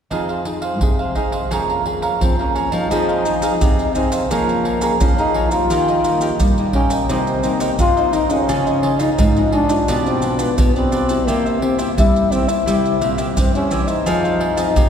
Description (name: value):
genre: samba and choro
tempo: 86 BPM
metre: 4/4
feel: straight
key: F minor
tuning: A4 = 442 Hz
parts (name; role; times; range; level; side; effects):
- cavaquinho; accompaniment; 0.1-14.7 s; Eb4 to Bb5; -23 LUFS; right 4 dB; none
- nylon-string guitar; accompaniment; 0.1-14.9 s; F2 to Ab4; -25 LUFS; left 2 dB; none
- nylon-string guitar; bass; 0.1-14.9 s; F2 to G3; -23 LUFS; equal; none
- surdo, pandeiro and maracas; percussion; 0.1-14.9 s; none; -21 LUFS; right 1 dB; none
- breathy trombone; melody; 2.2-14.9 s; Bb3 to F4; -19 LUFS; left 2 dB; none
room: wet cathedral reverb, RT60 6.6 s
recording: recorded in a church or concert hall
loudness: -15 LUFS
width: side -8 dB against mid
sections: 0.1-2.9 A section; 2.9-14.9 B section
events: none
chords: 0.1 Fm7; 1.5 Bbm7/F; 2.9 Fm7; 4.3 Bbm7/F; 5.7 Eb; 7.1 Cm7; 8.5 Dbadd9; 9.9 G7/B; 11.3 C; 14.1 Fm